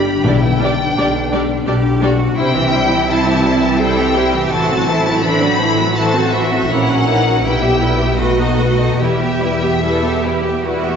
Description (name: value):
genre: classical, slow romantic movement for symphony orchestra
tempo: 72-86 BPM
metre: 3/4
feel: rubato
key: E minor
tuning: A4 = 438 Hz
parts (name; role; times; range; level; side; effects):
- clear chamber violin section; melody; 0.0-10.7 s; D#5 to B5; -20 LUFS; left 4 dB; none
- concert harp; arpeggios; 0.0-11.0 s; G2 to B4; -21 LUFS; left 5 dB; none
- clear symphonic double bass section; bass; 0.0-11.0 s; G1 to E2; -20 LUFS; right 2 dB; none
- rich symphonic cello section; bass; 0.0-11.0 s; C#4 to A4; -21 LUFS; right 3 dB; none
- rich symphonic viola section; accompaniment; 0.2-11.0 s; E3 to G4; -20 LUFS; right 2 dB; none
- timpani; percussion; 0.2-1.3 s; B2; -19 LUFS; left 3 dB; none
- warm symphonic violin section; second line; 0.3-11.0 s; E4 to E5; -22 LUFS; left 1 dB; none
room: wet recital hall reverb, RT60 1.5 s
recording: recorded in a church or concert hall, nothing above 7.8 kHz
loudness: -13 LUFS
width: side -7 dB against mid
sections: 0.0-11.0 A section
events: none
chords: 0.2 G/B; 2.4 C; 4.5 F#m7b5/A; 6.7 F#7/A#; 7.4 Em/B; 8.2 B7; 9.0 Em